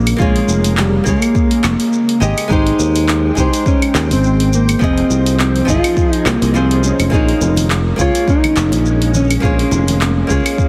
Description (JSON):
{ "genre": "sunset chillout", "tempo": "104 BPM", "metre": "4/4", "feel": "swing 55% on 16ths", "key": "Bb dorian", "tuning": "A4 = 440 Hz", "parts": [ { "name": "mellow electric guitar", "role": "melody", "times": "0.0-10.7 s", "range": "G3 to F4", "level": "-18 LUFS", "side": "equal", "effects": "delay" }, { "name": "flamenco guitar", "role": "accompaniment", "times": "0.0-10.7 s", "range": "F3 to Eb5", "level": "-25 LUFS", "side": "equal", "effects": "none" }, { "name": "soft string machine", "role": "sustained chords", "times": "0.0-10.7 s", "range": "Db3 to G5", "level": "-27 LUFS", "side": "equal", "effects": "ensemble chorus" }, { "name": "sustaining fretless electric bass", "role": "bass", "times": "0.0-10.4 s", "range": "F1 to Eb2", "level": "-18 LUFS", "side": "equal", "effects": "none" }, { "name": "deep house drum kit", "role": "drums", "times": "0.1-10.7 s", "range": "claves, handclaps, hi-hat, shaker", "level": "-24 LUFS", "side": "equal", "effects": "none" }, { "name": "electronic kick drum", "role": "drums", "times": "0.2-10.7 s", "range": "none", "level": "-19 LUFS", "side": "equal", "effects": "none" }, { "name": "congas", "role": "percussion", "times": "7.4-10.0 s", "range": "none", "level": "-27 LUFS", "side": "equal", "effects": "none" } ], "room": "moderate plate reverb, RT60 2.7 s", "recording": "heavily compressed radio sound", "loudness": "-14 LUFS", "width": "mono", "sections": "0.0-10.7 A section", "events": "none", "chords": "0.0 Bbm7; 2.2 Abmaj7; 4.8 Fm7; 7.1 Bbm7", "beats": "| 0.20 0.78 1.35 1.93 | 2.51 3.08 3.66 4.24 | 4.81 5.39 5.97 6.54 | 7.12 7.70 8.28 8.85 | 9.43 10.01 10.58" }